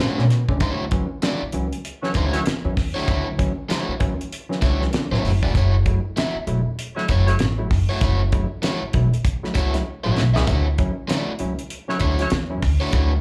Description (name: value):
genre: funk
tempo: 97 BPM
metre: 4/4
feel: swing 60% on 16ths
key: unclear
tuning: A4 = 435 Hz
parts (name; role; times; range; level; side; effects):
- overdriven electric guitar; accompaniment; 0.0-13.1 s; A3 to E5; -29 LUFS; equal; plate reverb, slapback echo
- damped 70s drum kit; drums; 0.0-13.1 s; hi-hat, kick drum, snare drum; -26 LUFS; equal; none
- overdriven clav; stabs; 0.2-13.2 s; B2 to E4; -31 LUFS; equal; plate reverb, slapback echo
- upright bass; bass; 0.2-13.2 s; E1 to B2; -23 LUFS; equal; none
- clear horn section; second line; 2.0-2.4, 7.0-7.3, 11.9-12.3 s; A3 to C#5; -30 LUFS; equal; plate reverb, slapback echo
room: light reverb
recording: live gig heard through the venue's PA, club reverb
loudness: -22 LUFS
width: mono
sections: 0.6-13.2 A section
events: drum fill 9.9-10.5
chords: 0.0 Bm9; 0.6 Dmaj9; 5.6 F#m7; 10.5 Dmaj9